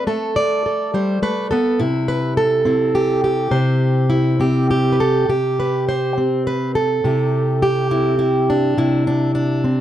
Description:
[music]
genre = folk, solo fingerstyle acoustic guitar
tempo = 69 BPM (dotted quarters)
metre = 6/8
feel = rubato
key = C major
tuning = A4 = 439 Hz
[part]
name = fingerpicked plugged-in steel-string acoustic guitar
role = solo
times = 0.0-9.8 s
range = C3 to D5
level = -16 LUFS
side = equal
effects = none
[sound]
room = small room ambience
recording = dry, close 1970s-style studio recording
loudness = -16 LUFS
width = side -11 dB against mid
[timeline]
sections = 0.0-5.3 A section; 5.3-9.8 B section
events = none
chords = 0.0 Am; 1.8 C

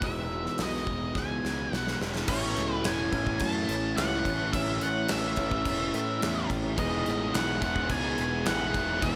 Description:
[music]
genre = rock, shoegaze and dream pop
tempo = 107 BPM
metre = 4/4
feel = straight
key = A lydian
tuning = A4 = 440 Hz
[part]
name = octave-fuzz lead guitar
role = melody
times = 0.0-9.2 s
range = C#5 to A5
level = -35 LUFS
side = equal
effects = distortion, tape echo
[part]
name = granular cloud pad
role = sustained chords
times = 0.0-9.2 s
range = E3 to C#5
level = -43 LUFS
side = equal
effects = none
[part]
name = electric guitar through a small old amp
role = riff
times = 0.0-9.2 s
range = A2 to E4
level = -36 LUFS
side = equal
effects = reverse reverb
[part]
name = thick fuzz guitar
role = riff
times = 0.0-9.2 s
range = E2 to A3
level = -38 LUFS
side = equal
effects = distortion, analog chorus
[part]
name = modern bright picked electric bass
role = bass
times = 0.0-9.2 s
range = E1 to A2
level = -38 LUFS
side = equal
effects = none
[part]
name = gated 80s drum kit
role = drums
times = 0.0-9.2 s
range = crash cymbal, hi-hat, kick drum, snare drum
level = -35 LUFS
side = equal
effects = none
[part]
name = biting overdriven guitar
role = riff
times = 6.8-9.2 s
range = E3 to G#4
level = -38 LUFS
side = equal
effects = none
[sound]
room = light reverb, studio reverb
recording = none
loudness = -29 LUFS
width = mono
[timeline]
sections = 0.0-2.3 A section; 2.3-9.2 B section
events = drum fill 1.2-2.3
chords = 0.0 Emaj7; 2.3 A; 6.8 Emaj7

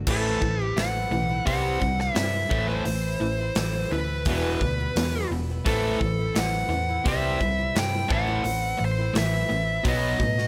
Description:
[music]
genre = classic rock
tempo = 86 BPM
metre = 4/4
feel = straight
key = unclear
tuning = A4 = 440 Hz
[part]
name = picked acoustic archtop guitar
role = accompaniment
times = 0.0-10.5 s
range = E2 to F#4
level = -38 LUFS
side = equal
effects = none
[part]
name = overdriven semi-hollow guitar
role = riff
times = 0.0-10.5 s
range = E2 to C4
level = -31 LUFS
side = equal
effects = none
[part]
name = hollow-body short-scale picked electric bass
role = bass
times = 0.0-10.5 s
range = E1 to A2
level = -32 LUFS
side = equal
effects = none
[part]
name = fuzz lead guitar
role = melody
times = 0.1-10.5 s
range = A4 to G5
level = -30 LUFS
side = equal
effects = distortion
[part]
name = big rock drum kit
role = drums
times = 0.1-10.5 s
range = crash cymbal, hi-hat, kick drum, snare drum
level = -32 LUFS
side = equal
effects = none
[sound]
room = little or no reverb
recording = none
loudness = -25 LUFS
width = mono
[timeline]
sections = 0.1-10.5 A section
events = none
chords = 0.1 Am; 1.5 C; 2.5 Am; 4.3 Em; 5.7 Am; 7.1 C; 8.1 Am; 9.8 B

